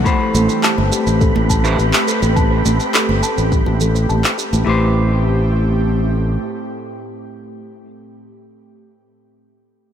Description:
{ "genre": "sunset chillout", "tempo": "104 BPM", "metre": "4/4", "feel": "straight", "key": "A minor", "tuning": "A4 = 440 Hz", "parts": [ { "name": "clean electric guitar", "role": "accompaniment", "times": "0.0-7.9 s", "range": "A3 to B5", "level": "-22 LUFS", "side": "moving between left 6 dB and right 4 dB", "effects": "auto-pan, ping-pong delay" }, { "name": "kalimba", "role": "arpeggios", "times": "0.0-4.9 s", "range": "G4 to A5", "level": "-24 LUFS", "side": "left 4 dB", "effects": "low-pass filter, ping-pong delay" }, { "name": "modern bright fingered electric bass", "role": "bass", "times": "0.0-6.4 s", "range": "G1 to A1", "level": "-17 LUFS", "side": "equal", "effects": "none" }, { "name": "airy breathy pad", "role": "sustained chords", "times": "0.1-7.7 s", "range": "A2 to G4", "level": "-23 LUFS", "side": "right 2 dB", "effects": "chorus" }, { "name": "electronic kick drum", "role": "drums", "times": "0.1-3.6 s", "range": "none", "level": "-17 LUFS", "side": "equal", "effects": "none" }, { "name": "electronic shaker and handclaps", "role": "drums", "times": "0.1-4.6 s", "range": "none", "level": "-20 LUFS", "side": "right 1 dB", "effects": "none" }, { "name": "wind-like tuned noise texture", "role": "texture", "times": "0.8-4.7 s", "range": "B4 to B5", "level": "-26 LUFS", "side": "equal", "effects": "built-in reverb" }, { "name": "congas", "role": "percussion", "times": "0.3-4.6 s", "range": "none", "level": "-25 LUFS", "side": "right 2 dB", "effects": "none" } ], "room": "light reverb", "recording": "none", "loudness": "-13 LUFS", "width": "side -9 dB against mid", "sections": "0.1-4.7 A section; 4.7-7.0 B section", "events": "filter sweep on kalimba 0.1-4.7", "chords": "0.1 Am9" }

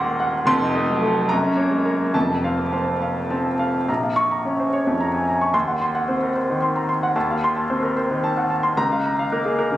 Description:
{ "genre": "classical, virtuoso piano study", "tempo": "73 BPM (dotted quarters)", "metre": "6/8", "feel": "rubato", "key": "Bb minor", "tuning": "A4 = 439 Hz", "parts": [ { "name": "clear grand piano", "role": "solo", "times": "0.0-9.8 s", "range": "Eb1 to Db6", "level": "-19 LUFS", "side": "equal", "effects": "none" } ], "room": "wet recital hall reverb, RT60 1.4 s", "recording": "recorded on a phone in the room, club reverb", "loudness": "-19 LUFS", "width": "side -14 dB against mid", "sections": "0.0-3.9 A section; 3.9-9.8 B section", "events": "none", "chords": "0.5 F7; 1.3 Gb; 2.1 F; 3.9 Bbm; 5.5 Cdim/Eb; 7.2 F7/Eb; 8.8 Bbm/Db" }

